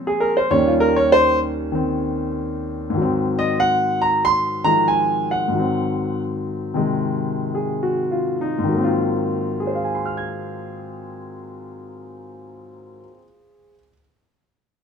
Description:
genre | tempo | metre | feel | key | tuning
solo jazz | 66-98 BPM | 4/4 | swing 68% on 8ths, rubato | Ab mixolydian | A4 = 436 Hz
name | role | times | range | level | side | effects
warm concert grand piano | solo | 0.0-14.0 s | Eb2 to Ab6 | -18 LUFS | equal | none
room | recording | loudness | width
moderate studio reverb, RT60 0.7 s | minimal, uncompressed stereo recording | -18 LUFS | side -6 dB against mid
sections
0.0-8.7 A section; 8.7-12.2 B section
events
grand piano solo 0.0-8.7; slowing down 3.0-8.7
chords
0.0 Bbm7; 0.5 Eb7; 3.0 Ab7

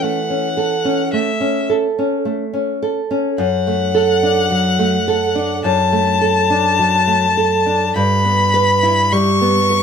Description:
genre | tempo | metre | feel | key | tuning
romantic duo for violin and classical guitar | 53 BPM | 4/4 | rubato | D major | A4 = 440 Hz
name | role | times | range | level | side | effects
clear violin | melody | 0.0-9.8 s | E5 to C#6 | -17 LUFS | left 4 dB | none
nylon-string guitar | accompaniment | 0.0-9.8 s | F#2 to B4 | -16 LUFS | right 2 dB | none
room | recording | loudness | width
moderate studio reverb, RT60 0.8 s | band playing live in one room | -14 LUFS | side -7 dB against mid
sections
0.0-9.8 A section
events
none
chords
0.0 A/E; 3.4 D/F#; 8.0 Em/G

